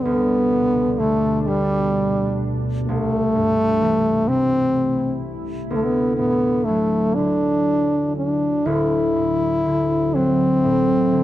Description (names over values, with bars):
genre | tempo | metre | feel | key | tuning
celtic folk, Celtic slow air | 42 BPM (dotted quarters) | 6/8 | uneven beats, rubato | D mixolydian | A4 = 440 Hz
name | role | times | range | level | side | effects
warm French horn | melody | 0.0-11.2 s | G3 to E4 | -19 LUFS | equal | none
concert harp | accompaniment | 0.0-11.2 s | D1 to F#3 | -24 LUFS | equal | none
deep dark ambient pad | sustained chords | 0.0-11.2 s | D2 to E4 | -27 LUFS | right 1 dB | chorus, built-in reverb
room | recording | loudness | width
small room ambience | dry, close 1970s-style studio recording | -17 LUFS | side -14 dB against mid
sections
0.0-8.7 A section; 8.7-11.2 B section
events
none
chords
0.0 G/D; 2.9 C6; 5.7 Dadd9